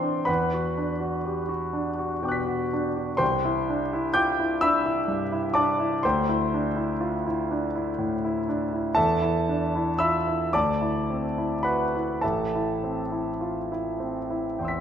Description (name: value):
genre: classical, impressionist solo piano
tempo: 34-43 BPM (dotted quarters)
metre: 6/8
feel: rubato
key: unclear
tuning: A4 = 440 Hz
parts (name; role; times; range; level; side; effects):
- clear concert grand piano; solo; 0.0-14.8 s; A1 to B6; -23 LUFS; equal; none
room: moderate concert hall reverb, RT60 1.8 s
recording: minimal, uncompressed stereo recording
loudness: -23 LUFS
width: side -8 dB against mid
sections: 0.0-14.8 A section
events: none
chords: 0.3 Em9; 3.2 C69; 6.0 Dm9; 9.0 E7sus4; 10.5 D9; 12.2 Am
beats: | 0.28 1.75 | 3.21 4.61 | 6.04 7.50 | 8.97 10.53 | 12.22 13.99